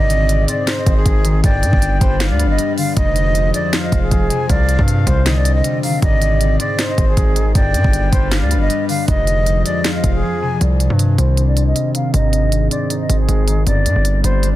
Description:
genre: hip hop, trap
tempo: 157 BPM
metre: 4/4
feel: half-time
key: C harmonic minor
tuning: A4 = 441 Hz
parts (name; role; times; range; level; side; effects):
- breathy hollow jazz flute; melody; 0.0-14.6 s; Ab4 to F5; -22 LUFS; right 1 dB; low-pass filter, ping-pong delay
- breathy flute-like synth lead; second line; 0.0-10.6 s; C5 to Ab5; -27 LUFS; left 4 dB; chorus, ping-pong delay
- concert harp; accompaniment; 0.0-14.6 s; F2 to Eb4; -21 LUFS; left 2 dB; low-pass filter
- warbly tape-like pad; sustained chords; 0.0-14.6 s; C3 to D5; -25 LUFS; left 1 dB; chorus, built-in reverb, low-pass filter
- distorted 808-style bass; bass; 0.0-14.6 s; F1 to G2; -16 LUFS; equal; distortion
- trap drum kit; drums; 0.1-14.5 s; handclaps, hi-hat, kick drum, snare drum; -18 LUFS; equal; none
room: little or no reverb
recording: dense, heavily limited modern master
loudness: -13 LUFS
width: side -15 dB against mid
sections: 0.0-10.6 A section; 10.6-14.6 B section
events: break 10.2-10.6; filter sweep 10.6-14.6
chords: 0.0 Ab; 1.4 G; 3.0 Fm; 4.5 Cmadd9; 6.0 Ab; 7.6 G; 9.1 Fm; 10.6 Cmadd9; 12.1 Ab; 13.7 G

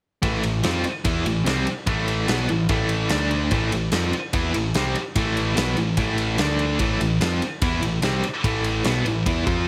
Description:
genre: hard rock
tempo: 146 BPM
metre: 4/4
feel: straight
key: A minor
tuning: A4 = 440 Hz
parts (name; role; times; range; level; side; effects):
- heavy high-gain guitar; riff; 0.2-9.7 s; A2 to F4; -29 LUFS; equal; distortion
- overdriven electric guitar; riff; 0.2-9.7 s; A2 to F4; -28 LUFS; equal; tremolo
- growling picked electric bass; bass; 0.2-9.7 s; A1 to F2; -29 LUFS; equal; overdrive
- big rock drum kit; drums; 0.2-9.6 s; kick drum, ride cymbal, snare drum; -29 LUFS; equal; none
room: small room ambience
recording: none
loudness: -22 LUFS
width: mono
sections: 0.2-9.7 A section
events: none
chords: 0.2 Am; 3.1 D5; 3.5 Am; 6.4 D5; 6.8 Am

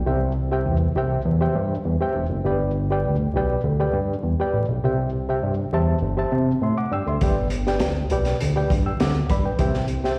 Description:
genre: uptempo 1960s-style soul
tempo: 101 BPM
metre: 4/4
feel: straight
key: G major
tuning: A4 = 440 Hz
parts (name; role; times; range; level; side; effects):
- fat analog bass; bass; 0.0-10.0 s; E1 to C3; -25 LUFS; equal; none
- reed electric piano; accompaniment; 0.1-10.2 s; G2 to E6; -27 LUFS; equal; fast tremolo, slapback echo
- crunchy breakbeat drum kit; drums; 7.2-10.1 s; hi-hat, kick drum, snare drum; -27 LUFS; equal; none
room: light reverb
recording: live gig heard through the venue's PA, recital hall reverb, vinyl crackle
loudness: -22 LUFS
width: mono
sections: 0.0-10.2 A section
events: none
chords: 0.1 C; 2.4 G; 4.8 C; 7.2 G; 9.6 C

